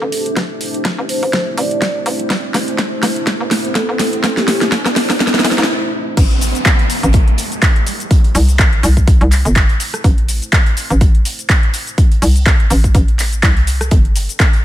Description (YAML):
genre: bass house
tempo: 124 BPM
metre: 4/4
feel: swing 56% on 16ths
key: A minor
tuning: A4 = 440 Hz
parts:
  - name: vibraphone with soft mallets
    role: melody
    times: 0.0-4.6 s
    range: G4 to D5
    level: -22 LUFS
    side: equal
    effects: digital delay
  - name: dark analog pad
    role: sustained chords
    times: 0.0-14.6 s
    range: G3 to C5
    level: -27 LUFS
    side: right 2 dB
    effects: wide subtle chorus, sidechain pumping
  - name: hollow knocking FM bass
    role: bass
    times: 0.0-14.3 s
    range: G1 to C2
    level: -15 LUFS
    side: equal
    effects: overdrive, sidechain pumping, high-pass filter
  - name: riser and downlifter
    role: sound effects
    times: 0.8-10.0 s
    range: none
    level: -24 LUFS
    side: right 1 dB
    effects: none
  - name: granular cloud pad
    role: texture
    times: 0.0-5.7, 14.2-14.6 s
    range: D4 to G5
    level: -28 LUFS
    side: equal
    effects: built-in reverb, sidechain pumping
  - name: big-room dance drum kit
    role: drums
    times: 0.1-14.6 s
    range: crash cymbal, handclaps, hi-hat, rim click, shaker, snare drum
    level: -17 LUFS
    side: equal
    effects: overdrive, studio ambience
  - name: electronic kick drum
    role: drums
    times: 0.4-14.5 s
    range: none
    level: -12 LUFS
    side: equal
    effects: overdrive, high-pass filter on kick, studio ambience
  - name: vintage drum kit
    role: drums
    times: 6.2-14.6 s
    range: hi-hat, snare drum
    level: -32 LUFS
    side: right 3 dB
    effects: none
room: digital ambience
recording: none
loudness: -12 LUFS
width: side -13 dB against mid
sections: 0.0-6.2 A section; 6.2-14.6 B section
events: build-up 0.0-6.2; drum fill 0.0-5.7; riser 0.8-5.7; break 5.7-6.2; drop 6.2-14.6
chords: 0.0 Am; 13.9 G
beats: | 0.37 0.85 1.33 1.82 | 2.30 2.79 3.27 3.75 | 4.24 4.72 5.20 5.69 | 6.17 6.66 7.14 7.62 | 8.11 8.59 9.07 9.56 | 10.04 10.53 11.01 11.49 | 11.98 12.46 12.95 13.43 | 13.91 14.40